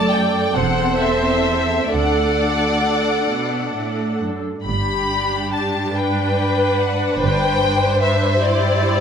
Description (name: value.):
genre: classical, slow romantic movement for string orchestra.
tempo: 43-51 BPM (dotted quarters).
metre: 6/8.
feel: rubato.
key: G major.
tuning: A4 = 441 Hz.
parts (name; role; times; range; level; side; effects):
warm symphonic violin section; melody; 0.0-9.0 s; D5 to B5; -22 LUFS; left 4 dB; none.
warm symphonic violin section; second line; 0.0-9.0 s; G4 to D5; -23 LUFS; left 2 dB; none.
warm symphonic viola section; accompaniment; 0.0-9.0 s; A3 to D5; -21 LUFS; right 2 dB; none.
clear symphonic cello section; bass; 0.0-9.0 s; D2 to B2; -23 LUFS; right 2 dB; none.
rich studio double bass section; bass; 0.0-8.0 s; E1 to D2; -25 LUFS; right 3 dB; none.
room: moderate recital hall reverb, RT60 1.7 s.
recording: none.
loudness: -16 LUFS.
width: side -7 dB against mid.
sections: 0.0-9.0 A section.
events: none.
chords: 0.0 D/F#; 0.5 C/E; 1.9 D; 4.7 G; 7.2 Cmaj9/G.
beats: 0.54 | 1.91 3.29 | 4.66 5.96 | 7.20 8.41.